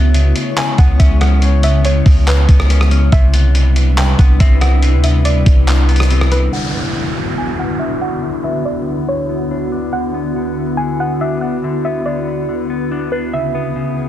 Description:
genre	hip hop, atmospheric cloud-rap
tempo	141 BPM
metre	4/4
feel	half-time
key	D lydian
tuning	A4 = 440 Hz
part	soft round pluck	melody	0.0-14.1 s	B4 to G#5	-23 LUFS	right 1 dB	chorus, low-pass filter, tape echo
part	glassy FM pad	sustained chords	0.0-14.1 s	C#2 to C#5	-20 LUFS	left 1 dB	ensemble chorus, built-in reverb, sidechain pumping, low-pass filter
part	clean electric guitar	arpeggios	0.0-14.1 s	C3 to D4	-24 LUFS	left 5 dB	low-pass filter, tape echo
part	clean 808-style bass	bass	0.0-6.5 s	C2 to D2	-11 LUFS	equal	none
part	lo-fi sampler-style drum kit	drums	0.1-6.4 s	handclaps, hi-hat, kick drum, rim click	-15 LUFS	equal	none
part	downlifter	sound effects	6.5-9.9 s	none	-24 LUFS	right 2 dB	none
room	little or no reverb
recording	dense, heavily limited modern master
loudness	-12 LUFS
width	side -12 dB against mid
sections	0.0-6.5 A section; 6.5-14.1 B section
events	filter sweep 6.5-14.1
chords	0.0 C#m7; 3.1 Cmaj9; 6.5 D6; 13.3 C#m7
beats	0.14 0.57 0.99 | 1.42 1.85 2.27 2.70 | 3.12 3.55 3.97 4.40 | 4.83 5.25 5.68 6.10 | 6.53 6.95 7.38 7.80 | 8.23 8.65 9.08 9.51 | 9.93 10.36 10.78 11.21 | 11.63 12.06 12.48 12.91 | 13.34 13.76

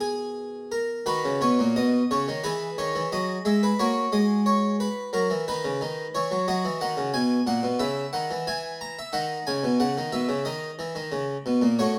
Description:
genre	classical, baroque-style suite movement for harpsichord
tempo	90 BPM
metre	4/4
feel	rubato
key	B major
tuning	A4 = 439 Hz
part	harpsichord	solo	0.0-12.0 s	A2 to A#5	-26 LUFS	equal	none
room	moderate stone room reverb, RT60 1.2 s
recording	none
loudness	-26 LUFS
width	mono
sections	0.0-1.1 A section; 1.1-12.0 B section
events	none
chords	0.0 B; 2.4 E; 3.8 F#7; 6.5 B; 7.8 C#madd11; 9.1 B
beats	0.36 | 1.06 1.75 2.44 3.11 | 3.79 4.46 5.14 5.81 | 6.47 7.14 7.81 8.48 | 9.14 9.80 10.46 11.12 | 11.78

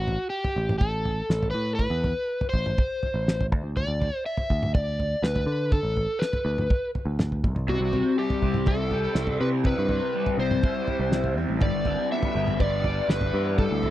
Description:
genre	psychedelic rock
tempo	122 BPM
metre	4/4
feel	straight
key	unclear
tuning	A4 = 440 Hz
part	overdriven slide guitar	melody	0.0-13.9 s	F#4 to E5	-28 LUFS	equal	tape echo
part	picked electric bass	bass	0.0-13.9 s	G1 to D3	-27 LUFS	equal	none
part	cloth-damped thuddy drum kit	drums	0.1-13.9 s	kick drum, snare drum, toms	-26 LUFS	equal	none
part	tonewheel organ	sustained chords	7.7-13.9 s	G3 to G4	-36 LUFS	right 4 dB	slow rotary speaker, overdrive
part	raw garage guitar	riff	7.7-13.9 s	C3 to D5	-28 LUFS	left 2 dB	overdrive, phaser
room	little or no reverb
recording	dry, close 1970s-style studio recording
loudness	-23 LUFS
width	side -14 dB against mid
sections	0.0-13.9 A section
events	none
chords	0.0 Am; 3.5 N.C.; 7.4 C; 11.6 G6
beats	0.32 0.81 1.30 | 1.79 2.28 2.77 3.27 | 3.76 4.25 4.74 5.23 | 5.72 6.21 6.71 7.20 | 7.69 8.18 8.67 9.16 | 9.65 10.14 10.64 11.13 | 11.62 12.11 12.60 13.09 | 13.58

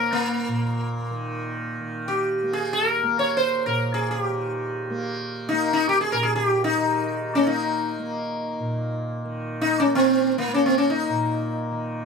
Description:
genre	indian classical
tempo	free time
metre	none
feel	none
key	Bb raga bageshri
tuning	A4 = 440 Hz
part	sitar	melody	0.0-12.1 s	Bb3 to Db5	-22 LUFS	left 1 dB	none
part	tanpura	drone	0.0-12.1 s	Bb2 to Bb3	-29 LUFS	right 1 dB	none
room	light reverb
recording	close, detailed microphones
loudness	-21 LUFS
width	side -5 dB against mid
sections	0.0-1.8 A section; 1.8-12.1 A section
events	none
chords	none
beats	free time

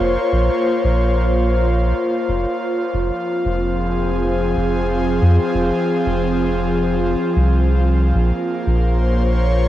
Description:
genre	ambient dub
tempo	92 BPM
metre	4/4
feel	swing 58% on 16ths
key	Bb minor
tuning	A4 = 439 Hz
part	airy breathy pad	sustained chords	0.0-9.7 s	F3 to Db5	-18 LUFS	equal	chorus, cassette tape
part	soft dub sub bass	bass	0.0-9.7 s	F1 to F2	-18 LUFS	equal	none
room	light reverb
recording	home recording on cassette, nothing above 10.8 kHz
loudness	-16 LUFS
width	side -13 dB against mid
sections	0.0-9.7 A section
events	none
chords	0.0 Bbmadd9; 2.9 Fm; 8.2 Bbm9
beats	| 0.33 0.98 1.63 2.28 | 2.93 3.59 4.24 4.89 | 5.54 6.20 6.85 7.50 | 8.15 8.80 9.46

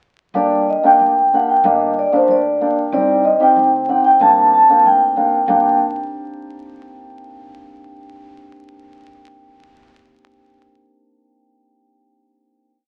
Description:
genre	klezmer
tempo	94 BPM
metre	2/4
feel	straight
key	G harmonic minor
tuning	A4 = 441 Hz
part	hammered dulcimer	accompaniment	0.3-5.8 s	Bb3 to G4	-22 LUFS	equal	none
part	upright bass	bass	0.3-5.8 s	G1 to D2	-35 LUFS	equal	none
part	vibraphone with soft mallets	melody	0.4-5.8 s	C5 to A5	-15 LUFS	equal	none
room	wet small room reverb, RT60 0.6 s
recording	very old 78 rpm record, vinyl crackle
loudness	-14 LUFS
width	mono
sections	0.3-5.5 A section; 5.5-6.7 final chord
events	none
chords	0.3 Gm; 2.9 Cm; 4.2 Gm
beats	| 0.34 0.99 | 1.64 2.28 | 2.92 3.57 | 4.21 4.84 | 5.48

